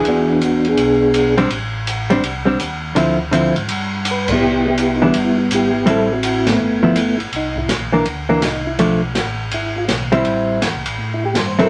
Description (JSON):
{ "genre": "soul jazz organ trio", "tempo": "165 BPM", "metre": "4/4", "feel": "swing 65% on 8ths", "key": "unclear", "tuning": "A4 = 440 Hz", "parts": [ { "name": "hollow-body jazz guitar", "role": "accompaniment", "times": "0.0-11.7 s", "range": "D3 to A4", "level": "-18 LUFS", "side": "equal", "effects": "none" }, { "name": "mellow tonewheel organ", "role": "bass", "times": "0.0-11.7 s", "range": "G1 to A2", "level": "-28 LUFS", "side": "equal", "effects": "chorus vibrato, slow rotary speaker" }, { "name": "percussive tonewheel organ", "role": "melody", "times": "0.1-1.4, 4.1-11.7 s", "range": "G3 to C5", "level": "-19 LUFS", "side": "equal", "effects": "slow rotary speaker, chorus vibrato" }, { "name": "open jazz drum kit", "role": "drums", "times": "0.1-11.6 s", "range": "crash cymbal, hi-hat, kick drum, ride cymbal, snare drum", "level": "-24 LUFS", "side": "equal", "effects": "none" } ], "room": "moderate small room reverb, RT60 0.5 s", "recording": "none", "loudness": "-17 LUFS", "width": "mono", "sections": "0.0-7.3 A section; 7.3-11.7 B section", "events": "band accent 4.2, 6.4; tonewheel organ solo 7.3-11.7", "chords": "0.0 E7; 1.5 Am7; 3.0 Dm9; 3.7 G; 4.4 Cmaj7; 5.9 Am7; 6.6 G13; 7.3 C9; 8.8 Bm7b5; 9.5 E; 10.2 Am7", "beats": "| 0.05 0.41 0.78 1.14 | 1.50 1.87 2.23 2.59 | 2.96 3.32 3.69 4.05 | 4.41 4.78 5.14 5.50 | 5.87 6.23 6.60 6.96 | 7.33 7.69 8.06 8.42 | 8.79 9.15 9.52 9.88 | 10.25 10.62 10.98 11.35" }